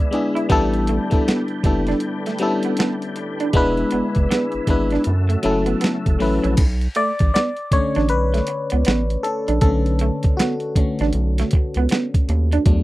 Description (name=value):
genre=R&B, neo-soul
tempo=79 BPM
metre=4/4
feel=swing 61% on 16ths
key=B minor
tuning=A4 = 439 Hz
part: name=FM electric piano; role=accompaniment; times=0.0-12.8 s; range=D3 to D5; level=-21 LUFS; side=left 2 dB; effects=chorus
part: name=tonewheel organ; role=sustained chords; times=0.0-6.6 s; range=C#3 to G4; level=-31 LUFS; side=right 1 dB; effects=slow rotary speaker, chorus vibrato
part: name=electric guitar through a small old amp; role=second line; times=0.1-12.6 s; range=A3 to E4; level=-24 LUFS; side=right 4 dB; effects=none
part: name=boom bap sampler-style drum kit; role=drums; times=0.1-12.8 s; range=crash cymbal, hi-hat, kick drum, snare drum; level=-19 LUFS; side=equal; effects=none
part: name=round analog bass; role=bass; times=0.5-12.8 s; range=E1 to F#2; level=-20 LUFS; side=equal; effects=none
room=little or no reverb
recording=dry, close 1970s-style studio recording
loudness=-17 LUFS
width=side -18 dB against mid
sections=0.0-6.6 A section; 6.6-12.8 B section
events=FM electric piano solo 6.6-12.8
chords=0.0 E7; 0.5 A9sus4; 3.5 E7; 5.1 F#m7; 6.6 Bm9